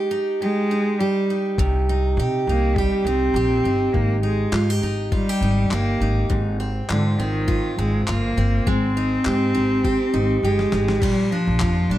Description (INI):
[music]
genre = acoustic pop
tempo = 102 BPM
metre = 4/4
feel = swing 55% on 16ths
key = unclear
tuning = A4 = 440 Hz
[part]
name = warm cello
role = melody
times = 0.0-12.0 s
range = D3 to C4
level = -23 LUFS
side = equal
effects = none
[part]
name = picked steel-string acoustic guitar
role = accompaniment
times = 0.0-12.0 s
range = Ab2 to G4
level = -24 LUFS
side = right 2 dB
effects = none
[part]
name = upright bass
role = bass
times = 1.6-12.0 s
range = G1 to C3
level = -22 LUFS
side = equal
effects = none
[part]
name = dusty soul sampler-style drum kit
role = drums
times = 1.6-11.8 s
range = crash cymbal, handclaps, kick drum, snare drum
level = -26 LUFS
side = left 1 dB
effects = none
[sound]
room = little or no reverb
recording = close, detailed microphones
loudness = -18 LUFS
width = side -13 dB against mid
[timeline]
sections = 0.0-11.0 A section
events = drum fill 10.4-11.0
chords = 0.0 Ab5; 1.6 Cm; 3.9 Ab5; 6.3 Fm7/Ab; 8.7 Abmaj7; 11.0 Bb